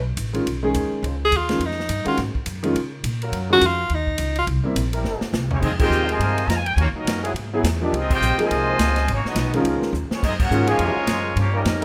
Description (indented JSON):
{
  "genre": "jazz, big band swing",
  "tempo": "209 BPM",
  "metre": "4/4",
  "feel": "swing 59% on 8ths",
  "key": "F minor",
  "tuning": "A4 = 440 Hz",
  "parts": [
    { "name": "upright bass", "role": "bass", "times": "0.0-11.8 s", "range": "G1 to Db3", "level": "-27 LUFS", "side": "equal", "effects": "none" },
    { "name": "swinging big-band drum kit", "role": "drums", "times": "0.2-11.8 s", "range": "crash cymbal, hi-hat, kick drum, ride cymbal, snare drum, toms", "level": "-30 LUFS", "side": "equal", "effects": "none" },
    { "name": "clear concert grand piano", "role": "accompaniment", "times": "0.3-11.8 s", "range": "D#3 to Ab4", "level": "-26 LUFS", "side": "equal", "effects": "none" },
    { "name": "warm trombone section", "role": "sustained chords", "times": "1.0-1.2, 3.2-11.8 s", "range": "F3 to C5", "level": "-31 LUFS", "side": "equal", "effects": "none" },
    { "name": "edgy tenor saxophone", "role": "melody", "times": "1.2-4.5 s", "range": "Eb4 to Ab4", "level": "-22 LUFS", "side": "equal", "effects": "none" },
    { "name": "clear trumpet section", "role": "melody", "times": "5.5-11.8 s", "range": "Bb3 to Bb5", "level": "-26 LUFS", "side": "equal", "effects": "none" },
    { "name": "bright trombone section", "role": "second line", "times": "5.5-11.8 s", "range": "C3 to G4", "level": "-30 LUFS", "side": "equal", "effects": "none" }
  ],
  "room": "moderate large studio reverb, RT60 0.9 s",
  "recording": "none",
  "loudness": "-21 LUFS",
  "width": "mono",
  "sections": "0.0-5.6 A section; 5.6-11.8 B section",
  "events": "tenor saxophone solo 0.0-5.6; drum fill 5.1-5.6, 9.9; band accent 5.8, 8.1, 10.4",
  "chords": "0.0 B9; 1.0 Dbadd9; 2.2 Ab5; 2.8 Db6; 3.3 Gbmaj7; 4.5 C7; 5.6 Fm7; 6.8 Ebm7; 7.4 Ab7alt; 7.9 Dbmaj9; 9.1 Abm7; 9.6 Db13; 10.2 Gbmaj9"
}